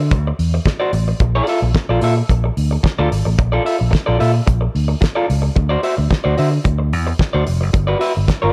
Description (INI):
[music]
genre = disco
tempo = 110 BPM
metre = 4/4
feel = straight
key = unclear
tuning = A4 = 440 Hz
[part]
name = electric guitar through a small old amp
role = accompaniment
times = 0.0-8.5 s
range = F4 to E5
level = -22 LUFS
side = equal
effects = none
[part]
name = fingered electric bass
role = bass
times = 0.0-8.5 s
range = F1 to D3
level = -19 LUFS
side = equal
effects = none
[part]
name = damped 70s drum kit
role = drums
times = 0.1-8.4 s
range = hi-hat, kick drum, snare drum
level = -22 LUFS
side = equal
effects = none
[sound]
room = light reverb, studio ambience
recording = dark, warm production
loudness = -17 LUFS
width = mono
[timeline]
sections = 0.0-8.5 A section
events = none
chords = 0.0 D7; 1.2 Bbmaj7; 5.6 D7; 7.7 Gmaj7